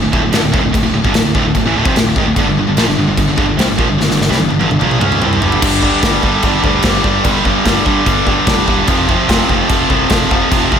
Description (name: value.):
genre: heavy metal.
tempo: 147 BPM.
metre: 4/4.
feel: straight.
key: unclear.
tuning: A4 = 440 Hz.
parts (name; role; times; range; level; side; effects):
high-gain distorted guitar; riff; 0.0-10.8 s; D2 to C#4; -15 LUFS; right 8 dB; distortion, slapback echo.
scooped high-gain guitar; riff; 0.0-10.8 s; D2 to C#4; -16 LUFS; left 9 dB; distortion, slapback echo.
overdriven picked electric bass; bass; 0.0-10.8 s; D1 to G2; -20 LUFS; equal; none.
big rock drum kit; drums; 0.1-10.8 s; crash cymbal, kick drum, snare drum, toms; -16 LUFS; equal; none.
room: moderate lush hall reverb, RT60 1.8 s, small room reverb.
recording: big arena sound.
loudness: -11 LUFS.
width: side -8 dB against mid.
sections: 0.0-5.6 A section; 5.6-10.8 B section.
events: drum fill 4.0-5.6.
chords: 0.0 Dm; 2.4 G5; 8.9 F5.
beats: 0.34 | 0.75 1.16 1.56 1.97 | 2.38 2.78 3.19 3.60 | 4.00 4.41 4.82 5.22 | 5.63 6.04 6.45 6.85 | 7.26 7.67 8.08 8.48 | 8.89 9.30 9.71 10.12 | 10.53.